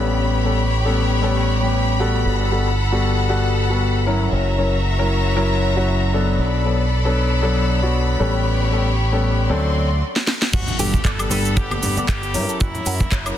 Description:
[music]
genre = nu-disco, nu disco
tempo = 116 BPM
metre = 4/4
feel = swing 56% on 16ths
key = G lydian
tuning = A4 = 439 Hz
[part]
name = warm concert grand piano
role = accompaniment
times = 0.0-13.4 s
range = F#3 to F#5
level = -22 LUFS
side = left 3 dB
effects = sidechain pumping, dub echo
[part]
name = bright studio violin section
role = sustained chords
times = 0.0-13.4 s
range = F#4 to C6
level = -25 LUFS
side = left 1 dB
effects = sidechain pumping
[part]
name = fingered electric bass with an envelope filter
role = bass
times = 0.0-13.3 s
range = F#1 to G2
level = -20 LUFS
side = equal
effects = none
[part]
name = house drum kit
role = drums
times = 10.2-13.4 s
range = crash cymbal, handclaps, hi-hat, shaker, snare drum, woodblock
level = -23 LUFS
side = equal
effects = none
[part]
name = clear tenor saxophone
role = melody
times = 10.5-13.4 s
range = E4 to A4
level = -28 LUFS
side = right 1 dB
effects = dub echo
[part]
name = electric guitar with an envelope filter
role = riff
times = 10.5-13.2 s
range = F#4 to G5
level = -33 LUFS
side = right 4 dB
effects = wide subtle chorus
[part]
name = kick drum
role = drums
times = 10.5-13.2 s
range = none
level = -20 LUFS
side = right 1 dB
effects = soft clipping on snare
[part]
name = egg shaker and congas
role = percussion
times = 10.5-13.2 s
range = none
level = -30 LUFS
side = left 1 dB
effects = none
[part]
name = impact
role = sound effects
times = 10.5-12.6 s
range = none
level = -29 LUFS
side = right 1 dB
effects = none
[sound]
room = light reverb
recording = dense, heavily limited modern master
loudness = -17 LUFS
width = side -11 dB against mid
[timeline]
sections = 0.0-10.5 A section; 10.5-13.4 B section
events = drum fill 10.1-10.5; drop 10.5-13.4; impact 10.5-12.6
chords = 0.0 A9; 2.3 Gmaj9; 4.3 F#7; 6.4 Bm7; 8.2 A9; 9.5 D7; 10.5 Gmaj9; 12.6 F#7

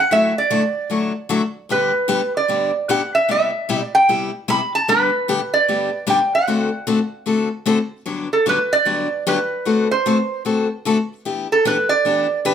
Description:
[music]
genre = jazz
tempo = 151 BPM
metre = 4/4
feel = swing 63% on 8ths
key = G major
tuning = A4 = 440 Hz
[part]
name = lap resonator guitar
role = melody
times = 0.0-12.5 s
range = A4 to B5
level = -17 LUFS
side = right 2 dB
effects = plate reverb
[part]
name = picked steel-string acoustic guitar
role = accompaniment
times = 0.1-12.5 s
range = G2 to A4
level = -20 LUFS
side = left 4 dB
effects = none
[sound]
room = wet studio reverb, RT60 0.6 s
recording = none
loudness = -16 LUFS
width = side -8 dB against mid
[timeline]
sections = 0.0-8.1 A section; 8.1-12.5 B section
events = resonator guitar played with a steel bar solo 8.1-12.5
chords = 0.1 Dadd9; 1.7 G; 3.3 Cmaj7; 4.9 G; 6.5 D7; 8.1 Gmaj7; 9.7 D7; 11.2 Em7

